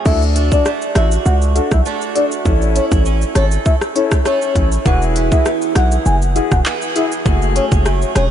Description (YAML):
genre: dancehall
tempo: 100 BPM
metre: 4/4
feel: straight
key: unclear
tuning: A4 = 436 Hz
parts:
  - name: picked swing-style acoustic guitar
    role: arpeggios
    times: 0.0-8.3 s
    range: F#2 to A4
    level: -23 LUFS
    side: right 8 dB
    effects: wide subtle chorus, ping-pong delay
  - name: soft octave-layered synth lead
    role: melody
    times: 0.1-8.3 s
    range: C#5 to G#5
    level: -20 LUFS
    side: left 3 dB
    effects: chorus, tremolo, ping-pong delay
  - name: warm concert grand piano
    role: accompaniment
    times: 0.1-7.8 s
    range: A3 to A4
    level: -22 LUFS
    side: left 3 dB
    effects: wide subtle chorus, sidechain pumping
  - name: hard-hitting 808-style bass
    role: bass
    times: 0.1-8.3 s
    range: E1 to D2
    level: -15 LUFS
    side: equal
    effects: none
  - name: island pop drum kit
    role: drums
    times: 0.1-8.3 s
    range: crash cymbal, handclaps, hi-hat, kick drum, rim click, shaker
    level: -18 LUFS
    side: equal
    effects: overdrive
room: light reverb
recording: nothing above 10.8 kHz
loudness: -13 LUFS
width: side -10 dB against mid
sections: 0.1-8.3 A section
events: none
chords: 0.1 D; 2.5 A; 4.9 Eadd9; 7.3 F#madd9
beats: | 0.06 0.66 1.26 1.86 | 2.46 3.06 3.66 4.26 | 4.86 5.46 6.06 6.66 | 7.26 7.86